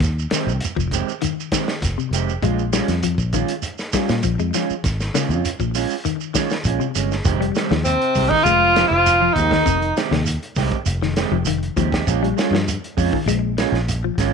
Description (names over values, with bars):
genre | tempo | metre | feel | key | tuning
afrobeat | 100 BPM | 4/4 | straight | F minor | A4 = 440 Hz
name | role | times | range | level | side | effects
fingered electric bass | bass | 0.0-14.3 s | F1 to Bb2 | -22 LUFS | equal | none
crunchy breakbeat drum kit | drums | 0.0-14.3 s | hi-hat, kick drum, snare drum | -25 LUFS | equal | none
shekere | percussion | 0.0-14.3 s | none | -28 LUFS | right 6 dB | none
clean electric guitar | arpeggios | 0.3-14.3 s | C3 to Ab3 | -25 LUFS | left 15 dB | slapback echo
electric guitar at the edge of break-up | stabs | 0.3-14.3 s | Eb3 to G4 | -25 LUFS | right 14 dB | none
warm tenor saxophone | melody | 7.8-9.9 s | C4 to F4 | -16 LUFS | equal | none
clear trombone section | second line | 7.8-10.0 s | C3 to F3 | -29 LUFS | right 11 dB | none
breathy alto saxophone | second line | 7.9-10.0 s | C4 to F4 | -27 LUFS | right 12 dB | none
room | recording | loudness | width
light reverb, small room ambience | 1960s-style stereo with parts hard left and right | -17 LUFS | side -6 dB against mid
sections
0.0-7.3 A section; 7.3-14.3 B section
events
none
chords
0.0 Fm9; 2.4 Bbm7; 7.3 Fm9; 12.1 Bbm7